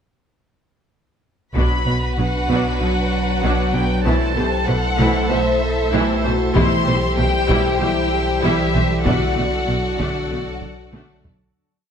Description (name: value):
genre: cinematic, hybrid orchestral and electronic film score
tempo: 96 BPM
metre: 4/4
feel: straight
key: B phrygian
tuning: A4 = 440 Hz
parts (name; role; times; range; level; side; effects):
- rich chamber violin section; melody; 1.5-11.2 s; E5 to C6; -25 LUFS; left 2 dB; none
- warm symphonic violin section; second line; 1.6-11.3 s; F#4 to D5; -26 LUFS; left 1 dB; none
- rich symphonic viola section; accompaniment; 1.6-11.3 s; E3 to C5; -26 LUFS; right 1 dB; none
- soft additive organ-like pad; sustained chords; 2.1-11.6 s; F#3 to B4; -26 LUFS; equal; ensemble chorus, built-in reverb
- harp-like synth pluck; arpeggios; 1.6-11.4 s; D3 to C5; -26 LUFS; right 3 dB; chorus
- clear symphonic double bass section; bass; 1.6-11.3 s; B1; -25 LUFS; right 2 dB; none
- rich symphonic cello section; bass; 1.6-11.3 s; B2; -26 LUFS; right 1 dB; none
- sub bass with octave; bass; 1.6-11.5 s; B1; -25 LUFS; equal; none
- taiko ensemble; drums; 1.6-2.8, 6.6-11.5 s; none; -25 LUFS; equal; none
- mellow French horn section; sustained chords; 2.8-11.3 s; F#3 to C5; -25 LUFS; left 4 dB; none
room: moderate scoring stage reverb, RT60 2.1 s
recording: none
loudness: -16 LUFS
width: side -7 dB against mid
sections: 1.6-11.6 theme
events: fade-out 9.1-11.6; drum fill 10.6-11.6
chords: 1.6 Bm; 4.1 Am/B; 6.6 C/B; 9.1 D/B